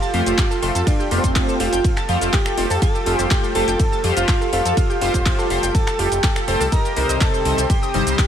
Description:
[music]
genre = progressive house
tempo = 123 BPM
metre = 4/4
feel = straight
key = F major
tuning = A4 = 444 Hz
[part]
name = wide unison lead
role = melody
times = 0.0-8.3 s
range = C4 to Bb4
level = -24 LUFS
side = right 1 dB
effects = cassette tape, tape echo
[part]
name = soft synth bell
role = second line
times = 0.0-8.3 s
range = C5 to Bb5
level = -30 LUFS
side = equal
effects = chorus, phaser, sidechain pumping, tape echo
[part]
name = lush unison pad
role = sustained chords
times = 0.0-8.3 s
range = C4 to C5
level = -27 LUFS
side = right 2 dB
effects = chorus, phaser, sidechain pumping
[part]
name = analog pluck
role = arpeggios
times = 0.0-8.2 s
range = Eb4 to A6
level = -28 LUFS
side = left 1 dB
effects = chorus, sidechain pumping, tape echo
[part]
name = deep house drum kit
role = drums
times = 0.0-8.3 s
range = finger snaps, handclaps, hi-hat, ride cymbal, shaker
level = -26 LUFS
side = equal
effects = none
[part]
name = chorused polysynth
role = stabs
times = 0.1-8.2 s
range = C3 to C5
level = -25 LUFS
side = left 2 dB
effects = phaser, sidechain pumping, tape echo
[part]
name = fat analog bass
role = bass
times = 0.1-8.1 s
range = F1 to F2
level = -23 LUFS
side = equal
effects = tube saturation, sidechain pumping
[part]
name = electronic kick drum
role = drums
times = 0.4-8.3 s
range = none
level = -19 LUFS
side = equal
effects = none
[sound]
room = light reverb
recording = none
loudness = -16 LUFS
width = side -9 dB against mid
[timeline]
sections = 0.0-8.3 A section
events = none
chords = 0.0 Fadd9; 6.7 Cm

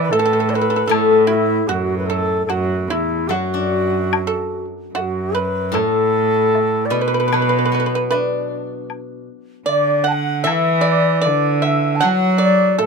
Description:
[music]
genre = chinese traditional, Chinese chamber ensemble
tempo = 76 BPM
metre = 4/4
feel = rubato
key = unclear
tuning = A4 = 439 Hz
[part]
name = bright reedy xiao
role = melody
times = 0.0-12.9 s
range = E4 to A5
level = -19 LUFS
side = left 2 dB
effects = none
[part]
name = pipa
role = second line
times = 0.0-12.9 s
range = E4 to F#5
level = -22 LUFS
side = right 5 dB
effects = none
[part]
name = rich cello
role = second line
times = 0.0-12.9 s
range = E2 to F#3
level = -21 LUFS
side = right 3 dB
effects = none
[part]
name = steel-string zither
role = accompaniment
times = 0.0-12.9 s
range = A2 to D4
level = -22 LUFS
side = left 4 dB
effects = none
[part]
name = woodblock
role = percussion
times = 0.1-12.9 s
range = none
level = -23 LUFS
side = left 9 dB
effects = none
[sound]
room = light reverb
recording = close, detailed microphones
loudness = -15 LUFS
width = side -5 dB against mid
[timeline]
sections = 0.0-12.9 A section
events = none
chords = none

